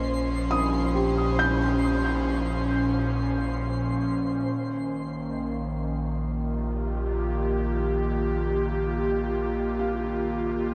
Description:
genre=ambient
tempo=68 BPM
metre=4/4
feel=straight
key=unclear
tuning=A4 = 440 Hz
part: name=airy breathy pad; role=sustained chords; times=0.0-10.7 s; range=Bb2 to G4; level=-29 LUFS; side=equal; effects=chorus
part: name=felt-muted upright piano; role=arpeggios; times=0.0-10.7 s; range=G4 to G6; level=-32 LUFS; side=equal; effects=shimmer reverb, diffuse ambient delay
part: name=warm sub bass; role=bass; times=0.0-10.7 s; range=Bb1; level=-33 LUFS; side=equal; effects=none
part: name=analog drone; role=drone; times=0.0-10.7 s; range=none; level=barely audible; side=none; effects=none
part: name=twinkling granular texture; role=texture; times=0.0-4.5 s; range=C5 to C6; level=-39 LUFS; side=equal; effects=built-in reverb, shimmer reverb
room=wet huge ambient reverb, RT60 8.0 s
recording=none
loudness=-26 LUFS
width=mono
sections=0.0-4.5 A section; 4.5-10.7 B section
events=fade-in on felt piano 4.5-10.7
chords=0.0 Bbmadd9

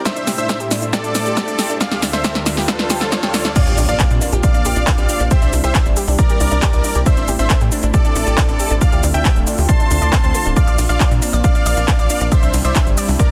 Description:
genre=uplifting trance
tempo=137 BPM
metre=4/4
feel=straight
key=D minor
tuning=A4 = 444 Hz
part: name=lush unison pad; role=sustained chords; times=0.0-13.3 s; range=D2 to E5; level=-29 LUFS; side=equal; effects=chorus, vintage 12-bit sampler grit, sidechain pumping
part: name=riser and impact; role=sound effects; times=0.7-5.3 s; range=none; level=-30 LUFS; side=equal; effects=none
part: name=dense compressed supersaw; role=melody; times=0.1-13.3 s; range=F4 to C6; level=-24 LUFS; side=equal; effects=sidechain pumping, tape echo
part: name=analog pluck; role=arpeggios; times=0.1-13.2 s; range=A3 to D5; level=-28 LUFS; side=equal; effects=chorus, sidechain pumping, tape echo
part: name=big-room dance drum kit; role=drums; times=0.1-13.3 s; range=crash cymbal, handclaps, hi-hat, ride cymbal, shaker, snare drum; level=-24 LUFS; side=equal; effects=overdrive
part: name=electronic kick drum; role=drums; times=0.1-13.3 s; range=none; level=-18 LUFS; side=equal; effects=high-pass filter on kick, high-pass filter on room
part: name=tight sequencer bass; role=bass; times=3.7-13.2 s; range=D1 to Bb2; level=-20 LUFS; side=equal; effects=tube saturation, sidechain pumping
room=digital ambience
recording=dense, heavily limited modern master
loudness=-16 LUFS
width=mono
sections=0.0-3.6 A section; 3.6-13.3 B section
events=build-up 0.0-3.6; drum fill 0.0-3.6; filter sweep on synth pluck 0.0-3.6; drop 3.6-13.3; impact 3.6-5.3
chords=0.1 Am; 1.8 Dm7; 3.6 Bbsus2; 5.3 C; 7.1 Am; 8.8 Dm7; 10.6 Bbsus2; 12.3 C

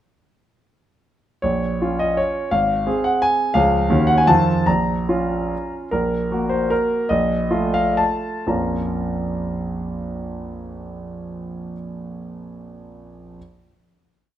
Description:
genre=classical, romantic triple-time dance for piano with dotted rhythms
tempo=112-186 BPM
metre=3/4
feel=rubato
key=Bb minor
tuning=A4 = 440 Hz
part: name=clear concert grand piano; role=solo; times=1.4-13.4 s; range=Ab1 to Bb5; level=-19 LUFS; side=equal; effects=none
room=moderate recital hall reverb, RT60 1.5 s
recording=close, detailed microphones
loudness=-18 LUFS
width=side -11 dB against mid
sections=1.4-5.9 A section; 5.9-8.5 coda; 8.5-11.3 final chord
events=slowing down 5.3-8.5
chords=1.4 Bbm; 2.5 Ab; 3.5 Db; 3.9 Ebm7; 4.3 F7; 4.7 Bbm; 5.9 Gb/Bb; 7.1 F7/Bb; 8.5 Bbm

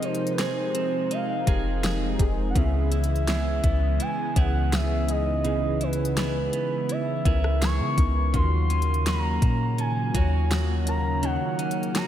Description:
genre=contemporary R&B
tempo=83 BPM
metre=4/4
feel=straight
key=unclear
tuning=A4 = 440 Hz
part: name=gliding portamento lead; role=melody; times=0.0-12.1 s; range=B4 to Db6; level=-30 LUFS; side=equal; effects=chorus, analog delay
part: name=warm analog keys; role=accompaniment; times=0.0-12.1 s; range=Cb4 to Db5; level=-33 LUFS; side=left 2 dB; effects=chorus
part: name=warm analog pad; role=sustained chords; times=0.0-12.1 s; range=C3 to Eb4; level=-32 LUFS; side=equal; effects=chorus
part: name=clean electric guitar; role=arpeggios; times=0.0-12.1 s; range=Db3 to Ab4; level=-32 LUFS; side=right 6 dB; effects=analog delay
part: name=smooth R&B drum kit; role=drums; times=0.0-12.1 s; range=hi-hat, kick drum, rim click, snare drum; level=-26 LUFS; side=equal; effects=none
part: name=soft 808-style bass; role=bass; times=1.5-11.4 s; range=F1 to Db3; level=-25 LUFS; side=equal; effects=none
room=moderate lush hall reverb, RT60 2.0 s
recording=dreamy mix soaked in reverb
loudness=-22 LUFS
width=side -11 dB against mid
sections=0.0-12.1 A section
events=none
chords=0.0 Fm7; 2.6 Dbm7; 8.3 Ebm7

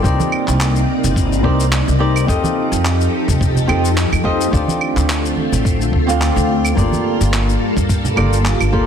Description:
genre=sunset chillout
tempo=107 BPM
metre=4/4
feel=swing 55% on 16ths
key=C dorian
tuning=A4 = 441 Hz
part: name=nylon-string guitar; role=accompaniment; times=0.0-8.9 s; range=Bb3 to F5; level=-20 LUFS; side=moving between left 4 dB and right 4 dB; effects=auto-pan, ping-pong delay
part: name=soft string machine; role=sustained chords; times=0.0-8.9 s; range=C3 to D5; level=-20 LUFS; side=equal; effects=phaser, ensemble chorus
part: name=upright bass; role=bass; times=0.0-8.9 s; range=F1 to G2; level=-18 LUFS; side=equal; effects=tube saturation
part: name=electronic kick drum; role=drums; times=0.0-8.9 s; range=none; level=-19 LUFS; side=equal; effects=small room reverb
part: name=electronic shaker, claves and handclaps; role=drums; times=0.0-8.7 s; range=none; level=-23 LUFS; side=equal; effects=small room reverb
part: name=congas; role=percussion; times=0.2-8.1 s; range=none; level=-23 LUFS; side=right 4 dB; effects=none
room=light reverb, studio reverb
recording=dense, heavily limited modern master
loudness=-14 LUFS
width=side -8 dB against mid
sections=0.0-8.9 A section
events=none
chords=0.0 Cm9; 2.3 F9; 4.5 Dm7; 6.8 Gm9

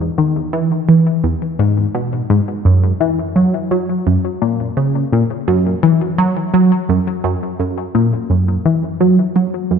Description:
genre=ambient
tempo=85 BPM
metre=4/4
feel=straight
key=unclear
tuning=A4 = 438 Hz
part: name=tight sequenced synth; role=solo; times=0.0-9.8 s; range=E2 to F#3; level=-13 LUFS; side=equal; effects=chorus, phaser, ping-pong delay
room=wet concert hall reverb, RT60 2.3 s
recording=none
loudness=-13 LUFS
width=side -7 dB against mid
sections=0.0-8.3 A section; 8.3-9.8 B section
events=none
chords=none

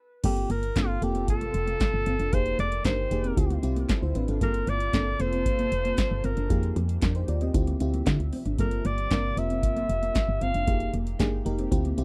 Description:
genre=early-eighties boogie funk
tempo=115 BPM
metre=4/4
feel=straight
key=unclear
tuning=A4 = 436 Hz
part: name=FM electric piano with soft pad layer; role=accompaniment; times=0.2-12.0 s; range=Bb3 to Eb5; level=-35 LUFS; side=equal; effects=chorus
part: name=lush unison pad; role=sustained chords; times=0.6-12.0 s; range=C3 to E5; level=-42 LUFS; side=equal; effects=chorus
part: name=mellow electric guitar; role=riff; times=0.2-12.0 s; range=G3 to F4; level=-38 LUFS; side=equal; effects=lush chorus
part: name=woody FM bass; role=bass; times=0.2-12.0 s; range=F1 to D3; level=-31 LUFS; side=equal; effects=none
part: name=electro analog drum machine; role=drums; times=0.2-12.0 s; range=crash cymbal, handclaps, hi-hat, kick drum, snare drum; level=-30 LUFS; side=equal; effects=none
part: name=warm alto saxophone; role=melody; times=0.3-10.9 s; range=F4 to F5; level=-32 LUFS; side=equal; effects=none
room=little or no reverb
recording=dry, close 1970s-style studio recording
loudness=-26 LUFS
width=mono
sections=0.2-12.0 A section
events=stop 0.0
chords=0.2 Gm11; 2.3 Fm11; 3.4 Dm11; 4.4 Gm11; 6.5 Fm11; 7.5 Dm11; 8.6 Gm11; 10.7 Fm11

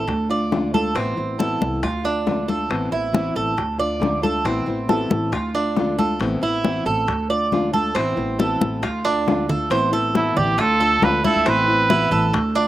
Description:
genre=latin, Cuban son and guajira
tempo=137 BPM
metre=4/4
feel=straight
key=A minor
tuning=A4 = 440 Hz
part: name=nylon-string guitar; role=accompaniment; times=0.0-12.7 s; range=D3 to F4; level=-25 LUFS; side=left 2 dB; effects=slapback echo
part: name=Cuban tres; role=arpeggios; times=0.0-12.7 s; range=C4 to D5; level=-23 LUFS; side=right 4 dB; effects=none
part: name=upright bass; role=bass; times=0.0-12.7 s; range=A1 to D2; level=-26 LUFS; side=right 1 dB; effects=none
part: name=bongos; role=percussion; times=0.1-12.6 s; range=none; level=-28 LUFS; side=left 6 dB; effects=slapback echo
part: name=congas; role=percussion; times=0.1-12.7 s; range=none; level=-24 LUFS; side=left 3 dB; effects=none
part: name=clear trumpet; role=melody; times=10.2-12.4 s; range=E4 to B4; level=-18 LUFS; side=right 3 dB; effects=slapback echo
room=little or no reverb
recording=recorded outdoors, with no room sound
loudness=-18 LUFS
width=side -14 dB against mid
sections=0.0-9.7 A section; 9.7-12.7 B section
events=drum fill 9.3-9.7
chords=0.1 Dm; 1.0 Amadd9; 1.8 Dm; 2.7 Amadd9; 3.6 Dm; 4.5 Amadd9; 5.3 Dm; 6.2 Amadd9; 7.1 Dm; 8.0 Amadd9; 8.8 Dm; 9.7 Amadd9; 10.6 Dm; 11.5 Amadd9

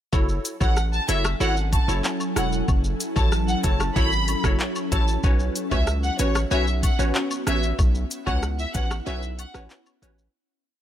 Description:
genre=dancehall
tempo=94 BPM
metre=4/4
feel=straight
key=F# minor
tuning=A4 = 441 Hz
part: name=wavetable chord stab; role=accompaniment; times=0.1-10.3 s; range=C#4 to C#5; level=-29 LUFS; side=equal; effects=phaser
part: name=ethereal airy pad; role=sustained chords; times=0.9-10.3 s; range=F#3 to G#5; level=-31 LUFS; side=left 1 dB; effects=ensemble chorus, built-in reverb, sidechain pumping
part: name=hard-hitting 808-style bass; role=bass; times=0.1-10.3 s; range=E1 to C#2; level=-25 LUFS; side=equal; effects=none
part: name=island pop drum kit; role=drums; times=0.1-10.3 s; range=handclaps, hi-hat, kick drum, rim click, shaker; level=-24 LUFS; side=equal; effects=none
part: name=woodblock and cabasa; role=percussion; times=0.1-10.2 s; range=none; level=-35 LUFS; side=left 9 dB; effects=none
part: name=warm studio violin section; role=melody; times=0.6-9.5 s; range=C#5 to B5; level=-29 LUFS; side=left 1 dB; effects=none
room=little or no reverb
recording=none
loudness=-20 LUFS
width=side -11 dB against mid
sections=0.1-10.3 chorus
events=fade-out 7.8-10.3; break 9.1-10.3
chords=0.1 F#m7; 5.2 Bsus2

